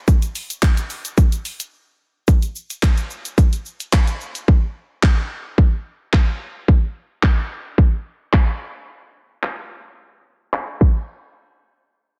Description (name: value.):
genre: pop.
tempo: 109 BPM.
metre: 4/4.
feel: straight.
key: none.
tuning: none.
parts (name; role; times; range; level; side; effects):
house drum kit; drums; 0.1-10.9 s; crash cymbal, handclaps, hi-hat, kick drum, shaker; -18 LUFS; equal; soft clipping on snare.
room: little or no reverb.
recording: dense, heavily limited modern master, low-pass filter.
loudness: -19 LUFS.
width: mono.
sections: 0.0-2.3 A section; 2.3-11.1 B section; 11.1-12.2 C section.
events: drop 0.0-2.3; break 1.7-2.3; filter sweep 2.3-11.1.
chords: none.